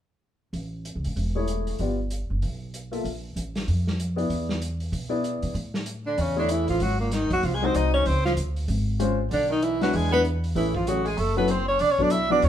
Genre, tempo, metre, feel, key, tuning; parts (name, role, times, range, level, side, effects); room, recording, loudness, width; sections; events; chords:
jazz, small-group swing and bop; 192 BPM; 4/4; swing 61% on 8ths; A major; A4 = 439 Hz
upright bass; bass; 0.5-12.5 s; E1 to B2; -27 LUFS; equal
vintage drum kit; drums; 0.5-12.5 s; hi-hat, kick drum, snare drum; -36 LUFS; equal
warm baby grand piano; accompaniment; 1.4-12.4 s; E3 to E5; -27 LUFS; left 3 dB
clear alto saxophone; melody; 6.1-12.5 s; Bb3 to E5; -24 LUFS; equal
clear tenor saxophone; second line; 6.1-12.5 s; Bb2 to E4; -30 LUFS; right 4 dB
moderate studio reverb, RT60 0.8 s; band playing live in one room; -23 LUFS; side -10 dB against mid
0.5-5.5 A section; 5.5-12.5 B section
0.5 Amaj7; 1.8 G7; 3.0 Bbmaj7(no3); 4.3 E7; 5.5 Amaj7; 6.8 G#7; 8.1 C#maj7; 9.3 Bm; 9.9 E7; 10.6 Amaj9; 11.2 F#m7; 11.8 Bm7